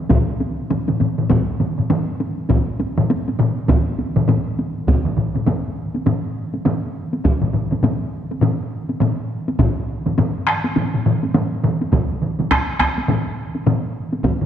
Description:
japanese traditional, taiko drum ensemble; 102 BPM; 4/4; swing 60% on 16ths
solo taiko drums; percussion; 0.1-14.5 s; -23 LUFS; right 5 dB
taiko ensemble; percussion; 0.1-14.4 s; -24 LUFS; equal
taiko ensemble; percussion; 0.1-14.5 s; -22 LUFS; left 4 dB
taiko ensemble; percussion; 0.1-14.4 s; -22 LUFS; right 1 dB
wet concert hall reverb, RT60 2.2 s; dark, warm production; -17 LUFS; side -9 dB against mid
0.0-4.9 A section; 4.9-14.5 B section
speeding up 0.0-14.5
| 0.10 0.70 1.30 1.90 | 2.50 3.10 3.69 4.29 | 4.88 5.47 6.07 6.66 | 7.25 7.84 8.42 9.01 | 9.60 10.18 10.76 11.35 | 11.93 12.51 13.09 13.66 | 14.24

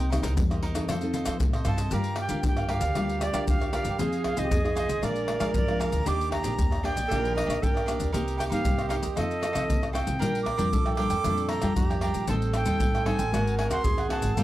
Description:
samba and choro; 116 BPM; 4/4; straight; G minor; A4 = 441 Hz
breathy bright jazz flute; melody; 0.0-14.4 s; D5 to D6; -32 LUFS; right 1 dB
cavaquinho; accompaniment; 0.0-14.4 s; D4 to G5; -36 LUFS; right 4 dB
nylon-string guitar; accompaniment; 0.0-14.4 s; F2 to Bb4; -32 LUFS; left 2 dB
upright bass; bass; 0.0-14.4 s; G1 to F3; -30 LUFS; equal
maracas, pandeiro, surdo and tamborim; percussion; 0.0-14.4 s; -29 LUFS; left 1 dB
breathy tenor saxophone; second line; 1.9-14.4 s; G4 to Bb4; -32 LUFS; right 4 dB
studio reverb; dry, close 1970s-style studio recording; -24 LUFS; side -15 dB against mid
0.0-1.9 A section; 1.9-14.4 B section
0.0 Cm7; 0.9 F7; 1.9 Gm7; 4.0 Fm7; 5.0 Bb7; 6.1 Ebmaj7; 8.1 Cm7; 9.2 F7; 10.2 Bb6; 12.3 Am7b5; 13.3 Ab9
0.38 0.89 1.41 | 1.93 2.44 2.96 3.48 | 4.00 4.51 5.03 5.55 | 6.07 6.59 7.11 7.62 | 8.14 8.66 9.18 9.69 | 10.21 10.73 11.25 11.77 | 12.29 12.80 13.32 13.84 | 14.36

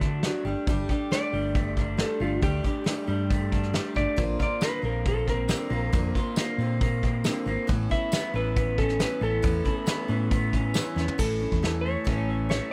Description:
folk rock and heartland rock; 137 BPM; 4/4; straight; A4 = 440 Hz
clean lap steel guitar; melody; 0.0-12.7 s; F4 to E5; -34 LUFS; equal
picked steel-string acoustic guitar; accompaniment; 0.0-12.7 s; A2 to A4; -36 LUFS; equal
electric guitar through a small old amp; riff; 0.0-12.7 s; A2 to G4; -35 LUFS; equal; subtle chorus
hollow-body short-scale fingered electric bass; bass; 0.0-12.6 s; G1 to D3; -31 LUFS; equal
soft brush drum kit; drums; 0.0-12.6 s; crash cymbal, hi-hat, kick drum, snare drum, toms; -30 LUFS; equal
tambourine; percussion; 4.6-10.8 s; -42 LUFS; equal
little or no reverb; -26 LUFS; mono
0.0-11.2 A section; 11.2-12.7 B section
electric slide guitar solo 0.0-11.2; drum fill 11.0
0.5 Gsus2; 4.2 Bbadd9; 7.7 Aadd9; 11.2 A
0.23 | 0.67 1.11 1.55 1.99 | 2.43 2.87 3.31 3.74 | 4.18 4.62 5.06 5.50 | 5.94 6.38 6.81 7.25 | 7.69 8.13 8.56 9.00 | 9.44 9.88 10.32 10.75 | 11.19 11.63 12.07 12.51

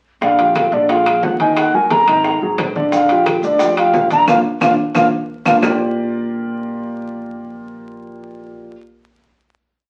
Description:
Afro-Cuban jazz; 178 BPM; 4/4; straight; Bb major; A4 = 441 Hz
mellow alto ocarina; melody; 0.2-5.6 s; D5 to Bb5; -17 LUFS; equal
warm concert grand piano; accompaniment; 0.2-8.7 s; D3 to Eb5; -22 LUFS; equal
upright bass; bass; 0.2-8.7 s; Ab1 to Eb2; -34 LUFS; equal
bongos; percussion; 0.2-5.7 s; -27 LUFS; equal
congas; percussion; 0.2-5.7 s; -31 LUFS; equal
timbales; percussion; 0.4-5.7 s; -26 LUFS; equal
claves; percussion; 0.6-5.7 s; -28 LUFS; equal
maracas; percussion; 2.9-5.7 s; -40 LUFS; equal
wet studio reverb, RT60 0.6 s; very old 78 rpm record, vinyl crackle, lossy compression artefacts; -15 LUFS; mono
0.2-5.6 A section; 5.6-8.3 final chord
band accent 4.3-5.6; drum fill 4.6-5.6
0.2 Bb6; 0.9 Bb5; 1.6 Ebm; 2.2 Absus2; 2.9 Bb6; 5.6 Bb69
| 0.22 0.56 0.89 1.23 | 1.57 1.91 2.25 2.58 | 2.92 3.26 3.60 3.94 | 4.28 4.62 4.95 5.29 | 5.63 5.96 6.30 6.64 | 6.98 7.31 7.65 7.99

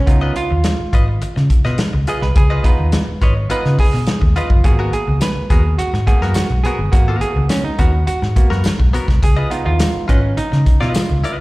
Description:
funk; 105 BPM; 4/4; straight; A4 = 441 Hz
overdriven clav; stabs; 0.0-11.4 s; A#3 to C#5; -22 LUFS; right 3 dB; plate reverb, slapback echo
vintage muted fingered electric bass; bass; 0.0-11.2 s; G1 to C#3; -16 LUFS; equal
direct-recorded clean electric guitar; accompaniment; 0.1-11.4 s; B3 to D#5; -26 LUFS; left 3 dB; wide subtle chorus, plate reverb, slapback echo
warm soul drum kit; drums; 0.1-11.4 s; hi-hat, kick drum, snare drum; -16 LUFS; equal
tambourine; percussion; 5.2-11.1 s; -34 LUFS; left 2 dB
light reverb; live gig heard through the venue's PA, recital hall reverb; -13 LUFS; side -20 dB against mid
0.0-11.4 A section
clav solo 0.0-11.4
0.1 C#9; 4.6 G#m9; 9.2 C#9
| 0.07 0.64 1.22 1.79 | 2.36 2.93 3.50 4.07 | 4.64 5.21 5.79 6.36 | 6.93 7.51 8.08 8.65 | 9.23 9.80 10.38 10.96

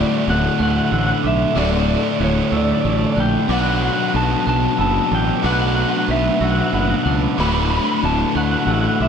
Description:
rock; 62 BPM (dotted quarters); 6/8; straight; D major; A4 = 439 Hz
electric guitar through a small old amp; melody; 0.0-9.1 s; C#5 to B5; -22 LUFS; equal; analog delay
granular cloud pad; sustained chords; 0.0-9.1 s; F#3 to D5; -30 LUFS; right 2 dB
glockenspiel with soft plastic mallets; arpeggios; 0.0-9.1 s; D6 to F#6; -32 LUFS; right 3 dB; analog delay
twangy electric guitar; arpeggios; 0.0-9.1 s; D2 to F#4; -28 LUFS; equal
overdriven semi-hollow guitar; riff; 0.0-9.1 s; D2 to B4; -22 LUFS; left 11 dB
tight distorted guitar; riff; 0.0-9.1 s; D2 to B4; -23 LUFS; right 12 dB; distortion
fuzz fingered electric bass; bass; 0.0-9.1 s; D1 to D2; -21 LUFS; right 1 dB; overdrive
moderate plate reverb, RT60 3.1 s; dreamy mix soaked in reverb; -16 LUFS; side -7 dB against mid
0.0-9.1 A section
0.0 D; 3.5 Bm7; 7.4 D
0.59 | 1.56 2.53 | 3.50 4.46 | 5.44 6.41 | 7.38 8.35

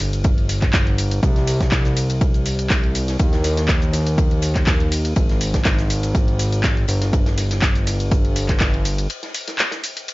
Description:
piano house; 122 BPM; 4/4; swing 53% on 16ths; A4 = 438 Hz
fat analog bass; bass; 0.0-9.1 s; G1 to Eb2; -20 LUFS; equal; sidechain pumping
modern studio drum kit; drums; 0.0-10.1 s; ride cymbal, snare drum; -32 LUFS; left 1 dB; high-pass filter on cymbals, high-pass filter on snare, high-pass filter on room
punchy analog drum machine; drums; 0.0-10.1 s; handclaps, hi-hat, ride cymbal, shaker; -24 LUFS; equal
electronic kick drum; drums; 0.2-8.7 s; -18 LUFS; equal
little or no reverb; nothing above 7.5 kHz; -16 LUFS; side -21 dB against mid
0.0-10.1 A section
break 9.1-10.1
0.24 0.74 | 1.23 1.72 2.21 2.70 | 3.20 3.69 4.18 4.67 | 5.16 5.66 6.15 6.64 | 7.13 7.62 8.11 8.61 | 9.10 9.59 10.08

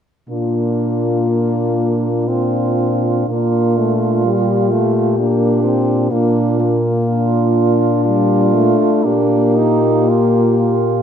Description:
classical, lyrical piece for horn quartet; 62 BPM; 3/4; uneven beats, rubato; Bb major; A4 = 440 Hz
warm French horn; melody; 0.3-11.0 s; D4 to G4; -20 LUFS; left 9 dB
warm French horn; second line; 0.3-11.0 s; D4 to F4; -19 LUFS; right 9 dB
mellow French horn; accompaniment; 0.3-11.0 s; G3 to C4; -19 LUFS; left 3 dB
dark French horn; bass; 0.3-11.0 s; Bb2; -19 LUFS; right 2 dB
moderate recital hall reverb, RT60 1.4 s; dark, warm production; -13 LUFS; side -8 dB against mid
0.3-11.0 A section
0.3 Bb
| 0.29 1.30 2.27 | 3.27 4.25 5.18 | 6.11 7.08 8.05 | 9.05 10.07

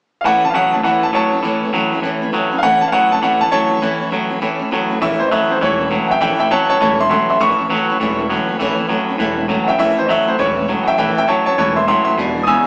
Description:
rockabilly; 201 BPM; 4/4; swing 62% on 8ths; A major; A4 = 441 Hz
clear upright piano; melody; 0.2-12.7 s; C5 to E6; -15 LUFS; equal
twangy electric guitar; riff; 0.2-12.7 s; E2 to F#3; -18 LUFS; equal
picked steel-string acoustic guitar; accompaniment; 0.3-12.7 s; E2 to E4; -22 LUFS; equal
upright bass; bass; 5.0-12.5 s; E1 to A1; -26 LUFS; equal
moderate large studio reverb, RT60 1.1 s; band playing live in one room, small speaker sound; -13 LUFS; side -34 dB against mid
0.2-5.0 A section; 5.0-12.7 B section
0.2 A
| 0.25 0.55 0.84 1.14 | 1.44 1.74 2.04 2.33 | 2.63 2.93 3.23 3.53 | 3.83 4.12 4.42 4.72 | 5.02 5.32 5.62 5.91 | 6.21 6.51 6.81 7.11 | 7.41 7.70 8.00 8.30 | 8.60 8.90 9.19 9.49 | 9.79 10.09 10.39 10.69 | 10.98 11.28 11.58 11.88 | 12.18 12.47

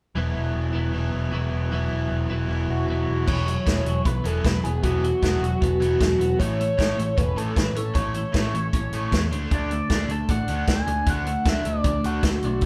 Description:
indie rock; 154 BPM; 4/4; straight; A4 = 440 Hz
biting overdriven guitar; riff; 0.2-12.6 s; A2 to E4; -33 LUFS; equal
twelve-string electric guitar; riff; 0.2-12.7 s; A2 to E4; -34 LUFS; equal; tremolo
growling picked electric bass; bass; 0.2-12.7 s; E1 to E2; -28 LUFS; equal; overdrive
overdriven synth lead; melody; 2.7-12.6 s; F#4 to A5; -29 LUFS; equal; distortion, phaser
vintage drum kit; drums; 3.3-12.7 s; crash cymbal, hi-hat, kick drum, snare drum; -27 LUFS; equal
moderate studio reverb, RT60 0.6 s; band playing live in one room; -24 LUFS; mono
0.2-3.3 A section; 3.3-12.7 B section
0.2 Esus2; 6.4 A; 9.3 D
| 0.16 0.55 0.94 1.33 | 1.72 2.11 2.50 2.89 | 3.28 3.67 4.06 4.45 | 4.84 5.23 5.62 6.00 | 6.39 6.78 7.17 7.56 | 7.95 8.34 8.73 9.12 | 9.51 9.90 10.29 10.68 | 11.07 11.46 11.85 12.24 | 12.63

